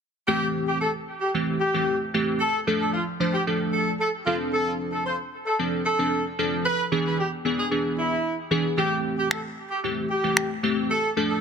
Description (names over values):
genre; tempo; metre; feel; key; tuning
dance-pop; 113 BPM; 4/4; straight; A minor; A4 = 436 Hz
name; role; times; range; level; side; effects
warm horn section; melody; 0.3-11.4 s; E4 to C5; -26 LUFS; equal; dub echo
glassy digital keys; accompaniment; 0.3-11.4 s; E3 to C5; -25 LUFS; equal; chorus
electronic finger snaps; drums; 9.3-10.5 s; none; -26 LUFS; equal; soft clipping on snare
room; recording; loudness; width
light reverb; dense, heavily limited modern master; -22 LUFS; side -6 dB against mid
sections
0.3-11.4 A section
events
none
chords
0.3 Am7; 2.4 F6; 6.7 E7; 8.8 Am7; 10.9 Dm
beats
| 0.28 0.81 1.34 1.88 | 2.41 2.94 3.47 4.00 | 4.53 5.06 5.59 6.12 | 6.66 7.19 7.72 8.25 | 8.78 9.31 9.84 10.37 | 10.90